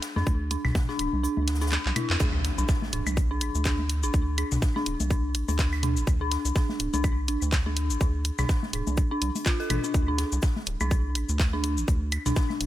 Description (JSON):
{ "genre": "minimal techno", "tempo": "124 BPM", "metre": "4/4", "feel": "swing 57% on 16ths", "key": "unclear", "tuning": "A4 = 440 Hz", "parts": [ { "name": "garage drum kit", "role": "drums", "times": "0.0-12.7 s", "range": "cabasa, handclaps, hi-hat", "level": "-32 LUFS", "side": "left 1 dB", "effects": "none" }, { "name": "street-band drum kit", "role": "drums", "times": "0.0-12.7 s", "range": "hi-hat, shaker, snare drum", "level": "-42 LUFS", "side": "left 3 dB", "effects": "high-pass filter on hats, high-pass filter on snare, high-pass filter on perc, high-pass filter on room" }, { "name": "dark detuned synth bell", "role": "riff", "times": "0.2-12.5 s", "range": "D4 to A4", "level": "-31 LUFS", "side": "equal", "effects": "chorus, phaser, sidechain pumping, tape echo" }, { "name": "rubbery square bass", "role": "bass", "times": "0.2-12.7 s", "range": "D1 to F2", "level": "-28 LUFS", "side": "equal", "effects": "sidechain pumping" }, { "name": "electronic congas, toms and claves", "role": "percussion", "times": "0.2-12.6 s", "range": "none", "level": "-34 LUFS", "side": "left 2 dB", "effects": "digital delay" }, { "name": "electronic kick drum", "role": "drums", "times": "0.3-12.5 s", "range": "none", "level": "-25 LUFS", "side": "equal", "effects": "none" }, { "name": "impact", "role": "sound effects", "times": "2.2-4.1 s", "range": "none", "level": "-36 LUFS", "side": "equal", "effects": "none" } ], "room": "little or no reverb", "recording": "none", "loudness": "-24 LUFS", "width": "side -14 dB against mid", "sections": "0.0-2.2 A section; 2.2-12.7 B section", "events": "kick drops out 1.2-2.2; drum fill 1.8-2.2; band accent 2.1; drop 2.2-12.7; impact 2.2-4.1", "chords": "none" }